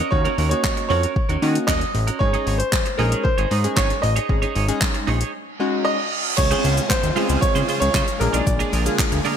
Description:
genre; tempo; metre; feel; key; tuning
dance-pop; 115 BPM; 4/4; straight; Db major; A4 = 436 Hz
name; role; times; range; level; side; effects
clear grand piano; melody; 0.0-9.3 s; Bb4 to Eb5; -24 LUFS; right 2 dB; none
twelve-string electric guitar; riff; 0.0-9.4 s; Db4 to Db5; -28 LUFS; right 8 dB; lush chorus
chorused retro synth keys; accompaniment; 0.1-9.4 s; Ab3 to Ab4; -27 LUFS; left 2 dB; sidechain pumping
fat analog bass; bass; 0.1-9.2 s; Ab1 to Eb3; -22 LUFS; left 1 dB; sidechain pumping
deep house drum kit; drums; 0.1-9.4 s; crash cymbal, handclaps, hi-hat, kick drum, shaker, snare drum; -23 LUFS; left 1 dB; overdrive, gated reverb
reverse cymbal and downlifter; sound effects; 5.6-9.4 s; none; -28 LUFS; right 3 dB; none
supersaw pad; sustained chords; 6.8-9.4 s; Db3 to Ab4; -28 LUFS; right 1 dB; lush chorus, sidechain pumping
tube shaker; percussion; 6.4-9.2 s; none; -40 LUFS; left 13 dB; none
room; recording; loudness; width
light reverb; bright 1980s-style digital production; -18 LUFS; side -8 dB against mid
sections
0.0-6.4 A section; 6.4-9.4 B section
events
silent gap 5.3-6.4; reverse cymbal 5.6-6.4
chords
0.0 Ebm7; 2.2 Absus4; 6.4 Dbmaj7; 8.2 Bb7

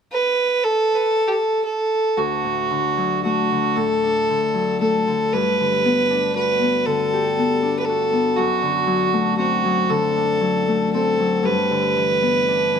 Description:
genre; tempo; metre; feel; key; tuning
celtic folk, Celtic slow air; 39 BPM (dotted quarters); 6/8; rubato; D mixolydian; A4 = 440 Hz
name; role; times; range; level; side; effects
warm fiddle; melody; 0.1-12.8 s; F#4 to B4; -19 LUFS; right 2 dB; none
Celtic harp; accompaniment; 2.2-12.8 s; D2 to G4; -22 LUFS; left 5 dB; none
room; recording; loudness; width
light reverb; close, detailed microphones; -17 LUFS; side -7 dB against mid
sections
0.0-2.2 A section; 2.2-12.8 B section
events
none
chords
0.0 N.C.; 2.2 D; 5.3 Gmaj7; 8.4 D7/F#; 11.5 G6

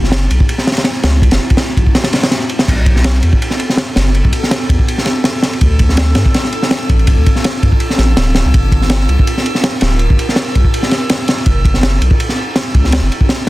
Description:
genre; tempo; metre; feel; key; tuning
drum and bass, jungle; 164 BPM; 4/4; swing 53% on 16ths; unclear; A4 = 445 Hz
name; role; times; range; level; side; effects
ethereal airy pad; sustained chords; 0.0-13.5 s; A3 to Bb4; -24 LUFS; equal; ensemble chorus, built-in reverb
saturated sub bass; bass; 0.0-13.1 s; D1 to G2; -13 LUFS; equal; none
crunchy breakbeat drum kit; drums; 0.0-13.5 s; crash cymbal, kick drum, ride cymbal, snare drum; -12 LUFS; equal; none
drifting glass-harmonics texture; texture; 3.3-13.5 s; E6; -27 LUFS; right 3 dB; chorus, built-in reverb
room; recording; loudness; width
small room ambience; dense, heavily limited modern master; -10 LUFS; side -18 dB against mid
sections
0.0-2.7 A section; 2.7-13.5 A section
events
drop 0.0-2.7, 2.7-13.5; break 2.0-2.7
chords
0.0 F#m7; 2.7 Bm7; 5.6 Dm7; 8.5 Gm7; 11.5 F#m7

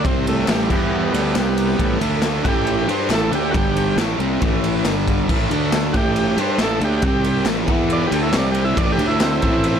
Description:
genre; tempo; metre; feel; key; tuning
garage rock duo or trio; 137 BPM; 4/4; straight; A minor; A4 = 444 Hz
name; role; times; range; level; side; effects
overdriven combo organ; melody; 0.0-9.8 s; G3 to D5; -23 LUFS; right 1 dB; plate reverb
fuzz guitar; riff; 0.0-9.8 s; G2 to G4; -20 LUFS; right 1 dB; distortion
fuzz fingered electric bass; bass; 0.0-9.8 s; G1 to G2; -24 LUFS; equal; overdrive
raw garage drum kit; drums; 0.0-9.7 s; crash cymbal, kick drum, ride cymbal, snare drum; -22 LUFS; equal; none
group handclap; percussion; 0.5-9.3 s; none; -32 LUFS; left 9 dB; none
room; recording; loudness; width
moderate studio reverb, RT60 0.5 s; none; -16 LUFS; side -8 dB against mid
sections
0.0-9.8 A section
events
transistor combo organ solo 0.0-9.8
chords
0.0 C5; 0.5 A5; 0.7 E5; 1.1 Gadd9/D; 1.4 C5; 1.8 A5; 2.0 D5; 2.4 A5; 3.5 G5; 4.0 Am; 4.8 G5; 5.3 A5; 5.5 D5; 5.9 A5; 7.0 C5; 7.5 A5; 7.7 E5; 8.1 A5; 8.3 C5; 8.8 A5; 9.0 D5

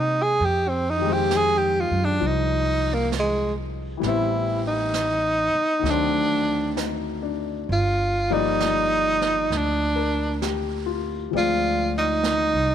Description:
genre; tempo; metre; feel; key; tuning
jazz ballad; 66 BPM; 4/4; swing 68% on 8ths; unclear; A4 = 440 Hz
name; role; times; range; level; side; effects
breathy tenor saxophone; melody; 0.0-12.7 s; Ab3 to G#4; -22 LUFS; right 2 dB; none
clear baby grand piano; accompaniment; 0.0-12.7 s; Eb3 to D5; -28 LUFS; left 13 dB; none
upright bass; bass; 0.0-12.7 s; G1 to C3; -27 LUFS; right 1 dB; tube saturation
jazz brush drum kit; drums; 0.4-12.7 s; brushed snare drum, hi-hat, snare drum; -34 LUFS; right 9 dB; none
room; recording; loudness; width
light reverb, small room ambience; 1960s-style stereo with parts hard left and right; -20 LUFS; side -9 dB against mid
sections
0.0-12.7 A section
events
tenor saxophone solo 0.0-12.7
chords
0.4 Fm9; 4.0 Am9; 5.8 D7b9; 7.7 Gm7; 11.3 Dm7b5

